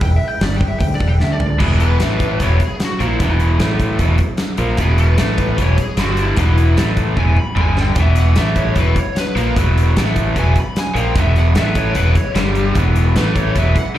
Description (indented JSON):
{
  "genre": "blues rock power trio and southern rock",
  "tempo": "151 BPM",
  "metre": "4/4",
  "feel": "straight",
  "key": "unclear",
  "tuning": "A4 = 439 Hz",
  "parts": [
    { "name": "fuzz lead guitar", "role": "melody", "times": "0.0-14.0 s", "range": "E4 to B5", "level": "-24 LUFS", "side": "left 2 dB", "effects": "distortion, slapback echo" },
    { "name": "overdriven tonewheel organ", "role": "sustained chords", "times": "0.0-1.6, 11.2-14.0 s", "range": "G3 to E5", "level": "-32 LUFS", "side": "right 5 dB", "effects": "none" },
    { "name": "growling fingered electric bass", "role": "bass", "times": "0.0-13.7 s", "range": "E1 to D2", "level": "-16 LUFS", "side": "equal", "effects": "overdrive" },
    { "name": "huge arena drum kit", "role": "drums", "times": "0.0-14.0 s", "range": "crash cymbal, hi-hat, kick drum, snare drum, toms", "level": "-19 LUFS", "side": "equal", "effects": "none" },
    { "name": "overdriven electric guitar", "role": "riff", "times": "1.6-14.0 s", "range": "E2 to A#3", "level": "-20 LUFS", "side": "equal", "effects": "spring reverb, slapback echo" }
  ],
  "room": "studio ambience",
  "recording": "live gig heard through the venue's PA, club reverb",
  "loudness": "-13 LUFS",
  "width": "side -13 dB against mid",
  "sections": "0.0-1.6 A section; 1.6-14.0 B section",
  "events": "lead electric guitar solo 0.0-1.6; drum fill 1.2-1.6, 7.2-8.0",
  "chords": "0.0 E; 1.2 D5; 1.6 E; 2.0 A5; 2.4 E5; 3.6 A5; 4.0 E5; 5.2 A5; 5.6 E; 6.0 G5; 6.4 E5; 6.8 A5; 7.2 E; 7.6 G5; 8.0 E5; 8.4 A5; 8.8 E5; 10.0 A5; 10.4 E; 11.6 A5; 12.0 E; 12.4 G5; 12.8 E; 13.2 A5; 13.6 E"
}